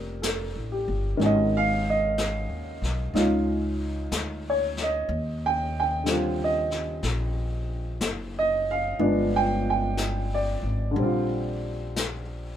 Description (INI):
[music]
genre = jazz ballad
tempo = 62 BPM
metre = 4/4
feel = swing 66% on 8ths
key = unclear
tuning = A4 = 443 Hz
[part]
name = warm baby grand piano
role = accompaniment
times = 0.0-12.6 s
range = D3 to G5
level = -25 LUFS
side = right 1 dB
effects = none
[part]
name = upright bass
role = bass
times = 0.0-12.6 s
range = F1 to Eb2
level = -30 LUFS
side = equal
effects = none
[part]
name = vintage brush drum kit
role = drums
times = 0.2-12.6 s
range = brushed snare drum, hi-hat, snare drum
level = -34 LUFS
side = left 4 dB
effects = none
[sound]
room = wet small room reverb, RT60 0.5 s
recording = band playing live in one room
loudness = -24 LUFS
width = side -10 dB against mid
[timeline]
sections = 0.0-12.6 A section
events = none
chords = 0.0 Bbmaj9; 1.2 Abm7; 3.1 Dbadd9; 5.1 Eb6; 9.0 G7b9; 11.0 Bb69